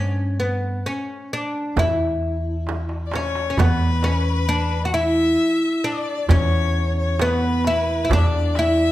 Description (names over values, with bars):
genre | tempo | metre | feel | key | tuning
Arabic maqam ensemble | 133 BPM (eighths) | 10/8 | straight | unclear | A4 = 440 Hz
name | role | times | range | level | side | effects
oud | melody | 0.0-8.9 s | B3 to F#4 | -22 LUFS | equal | none
upright bass | bass | 0.0-8.9 s | E2 to G2 | -22 LUFS | equal | none
darbuka | percussion | 0.4-8.8 s | none | -25 LUFS | right 1 dB | none
frame drum | percussion | 1.8-8.3 s | none | -28 LUFS | right 5 dB | none
clear violin | second line | 3.1-8.9 s | B4 to F#5 | -26 LUFS | left 5 dB | none
room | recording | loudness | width
light reverb | none | -18 LUFS | side -14 dB against mid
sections
0.0-3.6 A section; 3.6-8.9 B section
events
drum fill 2.7-3.6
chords
none